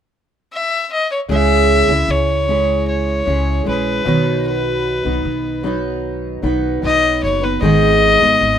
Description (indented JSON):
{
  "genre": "acoustic pop",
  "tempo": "76 BPM",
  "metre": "4/4",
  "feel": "straight",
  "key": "unclear",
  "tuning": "A4 = 443 Hz",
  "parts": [
    { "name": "warm fiddle", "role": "melody", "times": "0.5-8.6 s", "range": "B4 to E5", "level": "-17 LUFS", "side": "left 3 dB", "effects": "none" },
    { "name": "fingerpicked steel-string acoustic guitar", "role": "accompaniment", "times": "1.3-8.6 s", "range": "G#2 to B4", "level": "-17 LUFS", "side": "right 2 dB", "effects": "double-tracked left and right" },
    { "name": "upright bass", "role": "bass", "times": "1.3-8.6 s", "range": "F#1 to C#2", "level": "-21 LUFS", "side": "equal", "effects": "none" }
  ],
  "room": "light reverb",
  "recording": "rough home demo mix",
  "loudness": "-14 LUFS",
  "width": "side -9 dB against mid",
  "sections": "0.0-1.3 A section; 1.3-8.6 B section",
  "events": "none",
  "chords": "0.0 N.C.; 1.3 C#m; 4.1 B; 7.6 G#m"
}